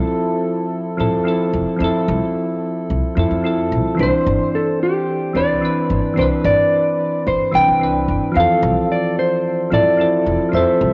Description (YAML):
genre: sunset chillout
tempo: 110 BPM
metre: 4/4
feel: straight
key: unclear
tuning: A4 = 440 Hz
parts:
  - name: soft electric-piano-like synth keys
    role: accompaniment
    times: 0.0-10.9 s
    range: E3 to E5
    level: -21 LUFS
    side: equal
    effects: chorus, cassette tape, analog delay
  - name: upright bass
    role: bass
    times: 1.0-10.9 s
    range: F1 to A2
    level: -24 LUFS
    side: equal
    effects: none
  - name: mellow electric guitar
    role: melody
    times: 4.0-10.9 s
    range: G4 to G5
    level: -20 LUFS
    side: equal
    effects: cassette tape, analog delay
room: wet spring reverb, RT60 1.9 s, small room ambience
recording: home recording on cassette, nothing above 7.5 kHz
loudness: -18 LUFS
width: mono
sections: 0.0-10.9 A section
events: none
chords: 0.0 Fmaj7; 4.0 Cmaj9; 8.4 Fmaj7